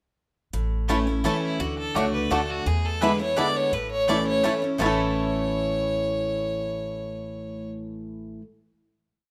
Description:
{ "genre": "bluegrass", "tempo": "169 BPM", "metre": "3/4", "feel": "straight", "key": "A major", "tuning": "A4 = 440 Hz", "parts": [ { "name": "picked steel-string acoustic guitar", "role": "accompaniment", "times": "0.5-8.4 s", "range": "E2 to F#4", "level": "-31 LUFS", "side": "equal", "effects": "none" }, { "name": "upright bass", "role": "bass", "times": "0.5-8.4 s", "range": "A1 to E2", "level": "-33 LUFS", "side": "equal", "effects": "none" }, { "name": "bluegrass banjo", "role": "arpeggios", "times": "0.9-8.4 s", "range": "A3 to A4", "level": "-31 LUFS", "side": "equal", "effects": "none" }, { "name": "mandolin", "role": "stabs", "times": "0.9-8.4 s", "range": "A3 to B5", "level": "-34 LUFS", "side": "equal", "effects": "none" }, { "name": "clear fiddle", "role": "melody", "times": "1.2-7.7 s", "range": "E4 to D5", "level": "-30 LUFS", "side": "equal", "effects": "none" } ], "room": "light reverb", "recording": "none", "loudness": "-25 LUFS", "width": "mono", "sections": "0.5-4.8 A section; 4.8-6.9 final chord", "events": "none", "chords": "0.5 A; 1.6 D; 2.7 E7; 3.7 A" }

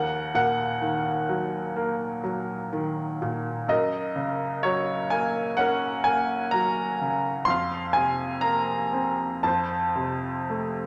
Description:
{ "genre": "classical, lyrical solo piano", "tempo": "63 BPM", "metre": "4/4", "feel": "rubato", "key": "unclear", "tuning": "A4 = 440 Hz", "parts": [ { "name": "bright upright piano", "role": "solo", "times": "0.0-10.9 s", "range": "Eb2 to C6", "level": "-26 LUFS", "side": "equal", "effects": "none" } ], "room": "moderate scoring stage reverb, RT60 2.0 s", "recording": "none", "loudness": "-26 LUFS", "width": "mono", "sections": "0.0-10.9 A section", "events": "none", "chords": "0.0 Ebm; 3.7 Gb; 7.5 Fsus4; 9.4 F" }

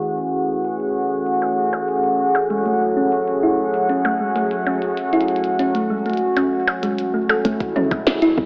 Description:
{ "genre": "IDM", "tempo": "97 BPM", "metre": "4/4", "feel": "straight", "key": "A major", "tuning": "A4 = 435 Hz", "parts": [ { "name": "warbly tape-like pad", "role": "sustained chords", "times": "0.0-8.5 s", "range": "C#3 to G#4", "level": "-21 LUFS", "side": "equal", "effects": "chorus, built-in reverb, vintage 12-bit sampler grit, sidechain pumping" }, { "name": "glitchy drum kit", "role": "drums", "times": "0.0-8.3 s", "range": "hi-hat, percussion blips, snare drum, toms", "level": "-22 LUFS", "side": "equal", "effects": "studio reverb, cassette tape" }, { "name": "bubbling stepped-filter texture", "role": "texture", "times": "0.0-7.5 s", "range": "F#4 to F#5", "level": "-22 LUFS", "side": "equal", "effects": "chorus, built-in reverb" }, { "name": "thumb-piano-like synth pluck", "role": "arpeggios", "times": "2.5-8.4 s", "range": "G#3 to A4", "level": "-21 LUFS", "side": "equal", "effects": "chorus, cassette tape, tape echo" }, { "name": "woody FM bass", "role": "bass", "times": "7.5-8.5 s", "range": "A1", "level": "-23 LUFS", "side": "equal", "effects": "none" }, { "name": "electronic kick drum", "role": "drums", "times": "7.6-8.5 s", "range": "none", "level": "-26 LUFS", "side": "equal", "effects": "studio reverb, cassette tape" } ], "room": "wet lush hall reverb, RT60 2.6 s", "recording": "home recording on cassette, low-pass filter, AM radio sound", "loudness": "-17 LUFS", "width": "side -37 dB against mid", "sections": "0.0-7.5 A section; 7.5-8.5 B section", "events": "filter sweep 0.0-7.5", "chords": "0.0 Amaj7; 2.5 F#madd9; 7.5 Amaj7" }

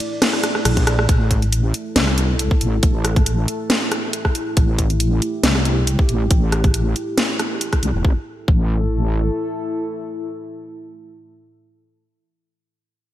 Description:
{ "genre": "deep dubstep", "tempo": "138 BPM", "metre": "4/4", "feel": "swing 54% on 16ths, half-time", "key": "A minor", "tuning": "A4 = 439 Hz", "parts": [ { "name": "dark analog pad", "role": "sustained chords", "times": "0.0-12.1 s", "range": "A3 to D5", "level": "-26 LUFS", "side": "equal", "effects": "chorus, phaser" }, { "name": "garage drum kit", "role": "drums", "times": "0.0-7.9 s", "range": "crash cymbal, hi-hat, rim click, snare drum", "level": "-20 LUFS", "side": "equal", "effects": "gated reverb" }, { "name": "wobble bass", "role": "bass", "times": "0.7-9.3 s", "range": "E1 to C2", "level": "-18 LUFS", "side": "equal", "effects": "chorus" }, { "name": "electronic kick drum", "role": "drums", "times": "0.8-8.6 s", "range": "none", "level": "-16 LUFS", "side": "equal", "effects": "none" } ], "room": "light reverb", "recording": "bright 1980s-style digital production", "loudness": "-16 LUFS", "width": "side -13 dB against mid", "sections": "0.0-1.1 A section; 1.1-8.0 B section; 8.0-11.5 C section", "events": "drop 0.0-1.1; drum fill 0.2-1.1", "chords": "0.0 A5; 1.1 Am; 8.0 A5" }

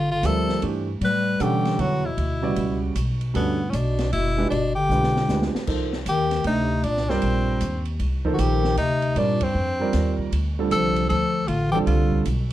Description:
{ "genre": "modal jazz", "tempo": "154 BPM", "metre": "3/4", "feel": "swing 65% on 8ths", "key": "C dorian from 5.7 s", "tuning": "A4 = 440 Hz", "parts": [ { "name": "bright tenor saxophone", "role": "melody", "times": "0.0-12.2 s", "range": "B3 to B4", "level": "-25 LUFS", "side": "left 1 dB", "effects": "none" }, { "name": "dark bass clarinet", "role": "second line", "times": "0.0-12.2 s", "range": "G2 to G3", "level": "-26 LUFS", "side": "left 4 dB", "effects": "none" }, { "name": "upright bass", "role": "bass", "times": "0.0-12.5 s", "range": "F#1 to B2", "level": "-25 LUFS", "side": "equal", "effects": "none" }, { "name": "warm concert grand piano", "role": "accompaniment", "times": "0.2-12.2 s", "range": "C#3 to F#5", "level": "-26 LUFS", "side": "right 4 dB", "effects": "none" }, { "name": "open jazz drum kit", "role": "drums", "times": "0.2-12.5 s", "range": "crash cymbal, hi-hat, kick drum, ride cymbal, snare drum", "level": "-34 LUFS", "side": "equal", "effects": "none" } ], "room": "moderate club reverb, RT60 0.5 s", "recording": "dark, warm production", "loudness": "-20 LUFS", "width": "side -14 dB against mid", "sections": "0.0-5.7 A section; 5.7-12.5 B section", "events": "drum fill 4.9-5.7; band accent 9.4", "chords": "0.0 G9sus4; 1.0 A9sus4; 4.5 G7b9; 5.7 Cm9; 10.3 Dm7" }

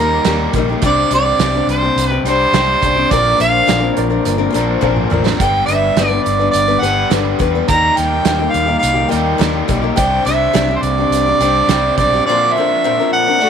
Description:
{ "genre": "folk rock and heartland rock", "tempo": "105 BPM", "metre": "4/4", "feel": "straight", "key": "unclear", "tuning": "A4 = 440 Hz", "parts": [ { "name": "mellow harmonica", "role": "melody", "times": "0.0-13.5 s", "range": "Bb4 to Bb5", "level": "-15 LUFS", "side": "right 3 dB", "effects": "none" }, { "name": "picked old ladder-braced acoustic guitar", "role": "accompaniment", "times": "0.0-13.5 s", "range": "G2 to B4", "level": "-19 LUFS", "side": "left 12 dB", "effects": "none" }, { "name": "overdriven electric guitar", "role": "riff", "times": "0.0-13.5 s", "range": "G2 to Bb4", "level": "-20 LUFS", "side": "equal", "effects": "none" }, { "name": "fingered electric bass", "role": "bass", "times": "0.0-12.2 s", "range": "G1 to E2", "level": "-21 LUFS", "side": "equal", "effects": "none" }, { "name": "loose indie drum kit", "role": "drums", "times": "0.2-12.1 s", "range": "hi-hat, kick drum, snare drum, toms", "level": "-20 LUFS", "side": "right 5 dB", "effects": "none" }, { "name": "clear upright piano", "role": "second line", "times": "3.9-5.2 s", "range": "Bb4 to D5", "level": "-25 LUFS", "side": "right 10 dB", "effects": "slapback echo" } ], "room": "light reverb", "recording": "1960s-style stereo with parts hard left and right", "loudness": "-12 LUFS", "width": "side -7 dB against mid", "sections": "0.0-13.5 A section", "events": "drum fill 4.8-5.4", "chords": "0.0 Eb; 0.8 Csus2; 3.1 Bbadd9; 5.4 G; 7.7 Eb; 10.0 Csus2; 12.3 Bbadd9" }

